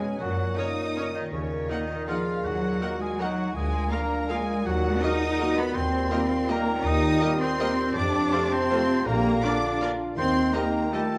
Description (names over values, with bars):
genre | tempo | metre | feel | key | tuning
classical | 162 BPM | 3/4 | uneven beats, rubato | unclear | A4 = 440 Hz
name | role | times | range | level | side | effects
mellow concert flute | second line | 0.0-11.2 s | C#5 to A5 | -38 LUFS | equal | none
mellow oboe | second line | 0.0-11.2 s | C#4 to D#5 | -35 LUFS | equal | none
rich studio violin section | second line | 0.0-11.2 s | C#5 to D#6 | -38 LUFS | equal | none
dark bassoon | accompaniment | 0.0-11.2 s | A#2 to Eb3 | -36 LUFS | equal | none
dark French horn section | sustained chords | 0.0-11.2 s | A#3 to A#4 | -36 LUFS | equal | none
rich studio cello section | bass | 0.0-11.2 s | C#3 to D#4 | -30 LUFS | equal | none
rich studio double bass section | bass | 0.2-10.5 s | Bb1 to F#2 | -34 LUFS | equal | none
rich studio violin section | melody | 0.6-11.0 s | C5 to F#5 | -39 LUFS | equal | none
clear studio viola section | accompaniment | 0.6-11.0 s | C#4 to A#4 | -40 LUFS | equal | none
warm trombone section | sustained chords | 0.6-11.1 s | C#3 to A#3 | -40 LUFS | equal | none
room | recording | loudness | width
moderate recital hall reverb, RT60 1.7 s | dark, warm production | -26 LUFS | mono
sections
0.0-11.2 A section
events
none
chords
0.2 F#; 1.3 D#m; 3.6 A#7/D; 4.7 D#m; 5.8 Eb; 8.0 F; 9.1 Bb; 10.2 Eb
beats
| 0.21 0.58 0.96 | 1.32 1.70 2.08 | 2.45 2.81 3.19 | 3.56 3.92 4.30 | 4.66 5.02 5.40 | 5.75 6.11 6.49 | 6.86 7.22 7.60 | 7.96 8.32 8.70 | 9.06 9.43 9.81 | 10.18 10.54 10.93